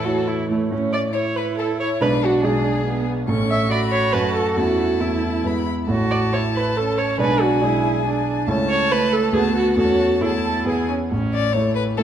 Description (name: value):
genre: quick classical-period movement for piano quartet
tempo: 138 BPM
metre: 3/4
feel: rubato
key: A major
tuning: A4 = 441 Hz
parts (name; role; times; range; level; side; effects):
- rich violin; melody; 0.0-12.0 s; F#4 to C#6; -27 LUFS; left 6 dB; none
- rich cello; second line; 0.0-12.0 s; E3 to A4; -26 LUFS; right 4 dB; none
- rich viola; accompaniment; 0.0-12.0 s; A3 to E5; -22 LUFS; right 2 dB; none
- warm concert grand piano; accompaniment; 0.0-12.0 s; A1 to D5; -22 LUFS; right 1 dB; none
room: wet scoring stage reverb, RT60 1.6 s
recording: none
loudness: -18 LUFS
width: side -9 dB against mid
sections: 0.7-11.1 A section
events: none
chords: 0.0 A; 2.0 G#dim/B; 3.3 A; 4.1 F#m; 4.6 A/E; 5.5 E; 5.9 A; 7.2 G#dim/B; 8.5 A/C#; 9.3 Bm7/D; 9.8 A/E; 10.7 E; 11.1 A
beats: 0.27 | 0.72 1.15 1.58 | 2.02 2.44 2.87 | 3.29 3.71 4.14 | 4.58 5.02 5.46 | 5.90 6.34 6.77 | 7.21 7.63 8.06 | 8.49 8.91 9.34 | 9.78 10.23 10.67 | 11.12 11.55 11.98